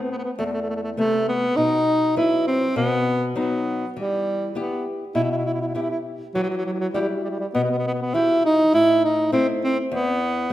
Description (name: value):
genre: italian folk, Italian serenade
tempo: 101 BPM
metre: 4/4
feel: straight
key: E harmonic minor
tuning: A4 = 442 Hz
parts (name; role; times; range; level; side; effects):
- clear alto saxophone; melody; 0.0-10.5 s; F#3 to E4; -20 LUFS; right 1 dB; none
- nylon-string guitar; accompaniment; 0.0-10.5 s; E2 to B4; -26 LUFS; left 3 dB; none
room: wet recital hall reverb, RT60 1.7 s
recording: none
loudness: -20 LUFS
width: side -14 dB against mid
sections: 0.0-6.4 A section; 6.4-10.5 B section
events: none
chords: 0.0 Amadd9; 1.6 Bsus4; 2.8 B; 4.0 Em; 6.4 Emadd9; 8.7 Am